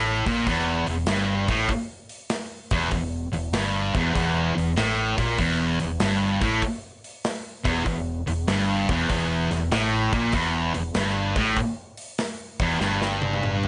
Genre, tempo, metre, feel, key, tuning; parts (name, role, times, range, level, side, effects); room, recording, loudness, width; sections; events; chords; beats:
blues rock power trio and southern rock; 97 BPM; 4/4; swing 67% on 8ths; A4 = 440 Hz
thick fuzz guitar; riff; 0.0-13.7 s; E2 to A#2; -25 LUFS; equal; distortion
fingered electric bass; bass; 0.0-13.7 s; E1 to A#1; -32 LUFS; equal
big rock drum kit; drums; 0.3-13.7 s; hi-hat, kick drum, snare drum, toms; -32 LUFS; equal
light reverb; nothing above 10.3 kHz; -25 LUFS; mono
0.0-13.7 A section
drum fill 12.8-13.7
0.0 Emadd11
0.47 1.08 | 1.69 2.31 2.92 3.54 | 4.15 4.77 5.38 6.00 | 6.62 7.24 7.86 8.47 | 9.09 9.71 10.33 10.95 | 11.57 12.19 12.80 13.42